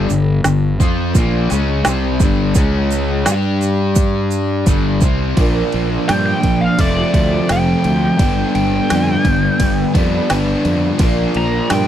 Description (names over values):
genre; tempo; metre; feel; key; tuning
classic rock; 85 BPM; 4/4; straight; unclear; A4 = 440 Hz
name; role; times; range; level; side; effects
overdriven electric guitar; riff; 0.0-11.9 s; F2 to G4; -17 LUFS; left 2 dB; none
fuzz fingered electric bass; bass; 0.0-11.9 s; F1 to G2; -19 LUFS; equal; overdrive
organic electronic drum kit; drums; 0.1-11.9 s; hi-hat, kick drum, ride cymbal, snare drum; -17 LUFS; equal; none
tube shaker; percussion; 0.1-5.2 s; none; -29 LUFS; right 17 dB; none
fingerpicked twelve-string acoustic guitar; accompaniment; 5.4-11.9 s; G2 to B4; -26 LUFS; right 8 dB; wide subtle chorus
biting lead guitar; melody; 6.1-11.9 s; D5 to Bb5; -20 LUFS; equal; wah, overdrive, slapback echo
room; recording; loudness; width
little or no reverb; dry, close 1970s-style studio recording; -13 LUFS; side -10 dB against mid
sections
0.0-5.4 A section; 5.4-11.9 B section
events
kick and snare drop out 4.0-5.4; lead electric guitar solo 5.4-11.9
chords
0.0 G5; 2.6 C#5; 3.3 G5; 5.4 Bb; 6.8 F; 8.2 G; 11.0 Bb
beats
0.46 1.16 1.86 | 2.57 3.27 3.98 4.68 | 5.38 6.09 6.79 7.50 | 8.20 8.90 9.61 10.31 | 11.02 11.72